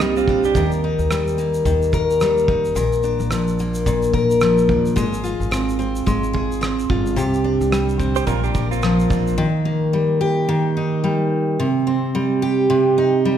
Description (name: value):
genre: acoustic pop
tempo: 109 BPM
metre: 4/4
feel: swing 60% on 16ths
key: Eb major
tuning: A4 = 443 Hz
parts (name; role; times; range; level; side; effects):
- direct-recorded clean electric guitar; second line; 0.0-0.7, 8.2-9.3 s; Bb3 to C5; -26 LUFS; right 8 dB; none
- picked steel-string acoustic guitar; accompaniment; 0.0-13.4 s; Bb2 to Bb4; -17 LUFS; equal; none
- upright bass; bass; 0.0-9.4 s; F1 to Eb2; -25 LUFS; equal; none
- cloth-damped thuddy drum kit; drums; 0.0-9.4 s; kick drum, rim click, shaker; -25 LUFS; right 1 dB; none
room: moderate concert hall reverb, RT60 2.4 s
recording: recorded in a church or concert hall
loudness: -16 LUFS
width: side -9 dB against mid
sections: 0.0-9.4 A section; 9.4-13.4 B section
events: none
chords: 0.0 Csus2; 0.6 Eb; 2.8 Bb; 5.0 Fm/Ab; 7.2 Csus2; 8.3 Bb; 9.4 Eb; 11.6 Cm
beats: 0.00 | 0.55 1.10 1.65 2.20 | 2.75 3.31 3.86 4.41 | 4.96 5.51 6.07 6.62 | 7.17 7.72 8.28 8.83 | 9.38 9.93 10.48 11.04 | 11.59 12.14 12.69 13.25